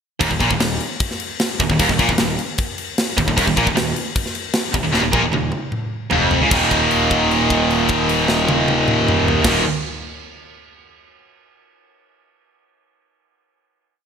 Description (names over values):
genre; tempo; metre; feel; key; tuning
heavy metal; 152 BPM; 4/4; straight; unclear; A4 = 440 Hz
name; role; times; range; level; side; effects
heavy high-gain guitar; riff; 0.2-9.6 s; Eb2 to Eb3; -21 LUFS; right 8 dB; distortion
tight distorted guitar; riff; 0.2-9.6 s; Eb2 to Eb3; -21 LUFS; left 10 dB; distortion
tight distorted guitar; riff; 0.2-9.6 s; Eb2 to Eb3; -23 LUFS; equal; distortion
fuzz picked electric bass; bass; 0.2-9.6 s; Eb1 to Db2; -24 LUFS; left 1 dB; overdrive
tight metal drum kit; drums; 0.2-9.5 s; crash cymbal, kick drum, snare drum, toms; -21 LUFS; equal; gated reverb
room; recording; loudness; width
moderate lush hall reverb, RT60 1.7 s, small room ambience; bright 1980s-style digital production; -15 LUFS; side -7 dB against mid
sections
0.2-6.5 riff; 6.5-9.7 final chord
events
drum fill 4.9-6.5; held note 6.5-9.4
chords
0.2 Eb5